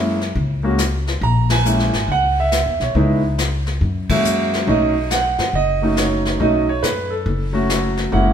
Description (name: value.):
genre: jazz piano trio.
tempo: 139 BPM.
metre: 4/4.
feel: swing 65% on 8ths.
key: unclear.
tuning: A4 = 440 Hz.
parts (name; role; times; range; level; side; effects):
clear concert grand piano; melody; 0.0-8.3 s; F#3 to A#5; -18 LUFS; right 2 dB; none.
upright bass; bass; 0.0-8.3 s; F#1 to F#2; -20 LUFS; left 1 dB; none.
jazz brush drum kit; drums; 0.2-8.3 s; brushed snare drum, hi-hat, kick drum, ride cymbal, snare drum; -24 LUFS; left 3 dB; none.
room: wet stone room reverb, RT60 1.4 s.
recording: band playing live in one room.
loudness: -16 LUFS.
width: side -8 dB against mid.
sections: 0.0-8.3 A section.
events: band accent 1.4, 4.0.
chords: 0.0 F#7 (rootless); 3.0 C#m7; 3.8 F#7; 4.7 B7.